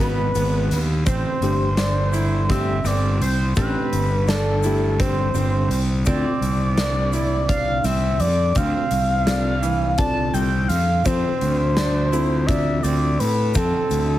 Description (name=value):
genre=progressive instrumental, band music in an uneven meter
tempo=168 BPM (eighths)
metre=7/8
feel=straight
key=unclear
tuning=A4 = 437 Hz
part: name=sync lead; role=melody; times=0.0-14.2 s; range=A4 to A5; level=-24 LUFS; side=equal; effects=chorus
part: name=tine electric piano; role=accompaniment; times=0.0-13.1 s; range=G#3 to A4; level=-26 LUFS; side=left 2 dB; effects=none
part: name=bright concert grand piano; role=arpeggios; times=0.0-14.0 s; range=E3 to E4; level=-28 LUFS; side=right 4 dB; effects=digital delay
part: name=fuzz fingered electric bass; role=bass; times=0.0-14.2 s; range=G1 to A2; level=-21 LUFS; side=equal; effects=overdrive
part: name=huge arena drum kit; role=drums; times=0.4-14.1 s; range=hi-hat, kick drum, snare drum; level=-26 LUFS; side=equal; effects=none
part: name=tube shaker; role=percussion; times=0.4-14.1 s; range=none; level=-38 LUFS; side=left 8 dB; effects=none
room=light reverb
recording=heavily compressed radio sound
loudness=-18 LUFS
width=side -14 dB against mid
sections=0.0-14.2 A section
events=none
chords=0.0 B6; 1.1 Am7; 6.1 Dm7; 11.1 F6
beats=0.34 0.70 | 1.06 1.42 1.78 2.13 2.49 2.85 3.21 | 3.56 3.92 4.28 4.64 4.99 5.35 5.71 | 6.07 6.42 6.78 7.14 7.49 7.85 8.21 | 8.56 8.92 9.28 9.63 9.99 10.35 10.70 | 11.06 11.41 11.77 12.13 12.48 12.84 13.20 | 13.55 13.91